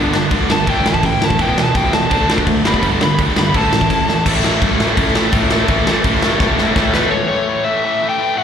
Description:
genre	punk rock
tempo	168 BPM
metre	4/4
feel	straight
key	unclear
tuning	A4 = 440 Hz
part	overdriven electric guitar	melody	0.0-4.3, 6.9-8.4 s	D4 to B5	-19 LUFS	equal	slapback echo
part	distorted electric guitar	riff	0.0-8.4 s	E2 to D4	-21 LUFS	left 10 dB	overdrive, slapback echo
part	distorted electric guitar	riff	0.0-7.1 s	E2 to D4	-20 LUFS	right 8 dB	distortion, slapback echo
part	high-gain distorted guitar	riff	0.0-7.1 s	G2 to A4	-21 LUFS	left 1 dB	distortion, slapback echo
part	fuzz picked electric bass	bass	0.0-7.1 s	E1 to A2	-22 LUFS	equal	overdrive
part	big rock drum kit	drums	0.1-7.0 s	crash cymbal, kick drum, snare drum	-18 LUFS	equal	none
room	light reverb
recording	live gig heard through the venue's PA, recital hall reverb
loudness	-13 LUFS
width	side -8 dB against mid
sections	0.0-4.3 A section; 4.3-7.1 B section; 7.1-8.4 C section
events	overdriven electric guitar solo 0.0-4.3; drum fill 4.1, 6.4-7.1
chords	0.0 G; 0.7 A; 1.4 Em; 2.1 D; 2.7 G; 3.5 A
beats	0.32 0.68 1.04 | 1.40 1.75 2.11 2.47 | 2.83 3.19 3.55 3.90 | 4.26 4.62 4.98 5.34 | 5.69 6.05 6.41 6.76 | 7.12 7.48 7.84 8.19

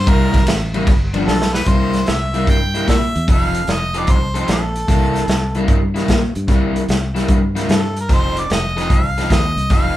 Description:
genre	electric blues shuffle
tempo	149 BPM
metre	4/4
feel	swing 68% on 8ths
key	C mixolydian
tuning	A4 = 440 Hz
part	bright harmonica	melody	0.0-10.0 s	A4 to G5	-22 LUFS	equal	overdrive
part	fingered electric bass	bass	0.0-10.0 s	F1 to Bb2	-21 LUFS	equal	none
part	overdriven semi-hollow guitar	riff	0.1-10.0 s	G2 to A4	-20 LUFS	left 1 dB	none
part	raw garage drum kit	drums	0.1-9.8 s	hi-hat, kick drum, ride cymbal, snare drum	-17 LUFS	equal	none
room	moderate studio reverb, RT60 0.6 s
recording	band playing live in one room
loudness	-14 LUFS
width	side -14 dB against mid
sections	0.0-1.7 A section; 1.7-10.0 B section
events	harmonica solo 0.0-1.7; drum fill 1.3-1.7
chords	0.0 C7; 0.9 G7; 1.7 C7; 3.3 F7; 4.9 C7; 8.1 F7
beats	| 0.07 0.47 0.87 1.27 | 1.67 2.07 2.47 2.87 | 3.27 3.68 4.08 4.48 | 4.88 5.28 5.68 6.09 | 6.49 6.89 7.29 7.69 | 8.09 8.50 8.90 9.30 | 9.70

